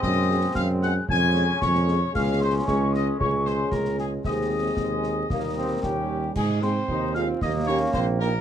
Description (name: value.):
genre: military-style march for wind band.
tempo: 114 BPM.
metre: 2/4.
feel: straight.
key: Ab major.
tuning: A4 = 440 Hz.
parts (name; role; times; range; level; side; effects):
mellow trumpet section; melody; 0.0-8.4 s; G4 to Ab5; -30 LUFS; left 3 dB; none.
mellow hollow wooden piccolo; second line; 0.0-8.3 s; G5 to Ab6; -30 LUFS; left 2 dB; none.
clear trombone section; sustained chords; 0.0-8.4 s; Ab3 to Eb4; -31 LUFS; equal; none.
mellow tuba; bass; 0.0-8.4 s; Bb1 to Ab2; -25 LUFS; right 2 dB; none.
concert snare drum, concert bass drum and clash cymbals; drums; 0.0-8.3 s; none; -33 LUFS; equal; none.
warm French horn section; accompaniment; 0.3-8.3 s; G3 to Bb4; -28 LUFS; left 3 dB; none.
warm euphonium; second line; 5.8-8.3 s; G3 to F4; -29 LUFS; right 6 dB; none.
room: light reverb.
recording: close, detailed microphones, vinyl crackle.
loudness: -22 LUFS.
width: side -9 dB against mid.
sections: 0.0-6.4 A section; 6.4-8.4 B section.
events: none.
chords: 0.0 Ab7/Gb; 1.1 Db/F; 2.1 Db5; 4.2 Ab/Eb; 5.3 Eb; 6.4 Ab; 7.4 Eb.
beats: | 0.03 0.56 | 1.08 1.61 | 2.14 2.67 | 3.19 3.72 | 4.25 4.78 | 5.30 5.83 | 6.36 6.89 | 7.42 7.94.